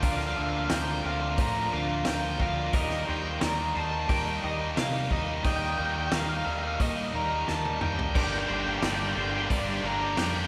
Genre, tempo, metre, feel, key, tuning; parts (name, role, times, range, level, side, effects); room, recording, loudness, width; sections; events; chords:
post-rock; 89 BPM; 4/4; straight; A4 = 440 Hz
raw garage guitar; melody; 0.0-10.5 s; D5 to Bb5; -34 LUFS; equal; overdrive
pedal steel guitar; sustained chords; 0.0-10.5 s; Eb4 to G5; -45 LUFS; equal
twangy electric guitar; arpeggios; 0.0-10.2 s; A4 to D6; -41 LUFS; equal
twelve-string electric guitar; arpeggios; 0.0-10.5 s; G2 to Bb4; -42 LUFS; equal
distorted electric guitar; riff; 0.0-10.5 s; G2 to F4; -35 LUFS; equal; overdrive
fingered electric bass; bass; 0.0-10.5 s; G1 to C3; -36 LUFS; equal
loose indie drum kit; drums; 0.0-10.3 s; crash cymbal, hi-hat, kick drum, snare drum, toms; -34 LUFS; equal
distorted electric guitar; riff; 8.1-10.5 s; G2 to G4; -34 LUFS; equal; overdrive
wet church reverb, RT60 2.9 s; recorded in a church or concert hall; -28 LUFS; mono
0.0-10.5 A section
drum fill 7.5-8.1
0.0 Bbadd9/D; 2.7 Eb; 8.1 Gm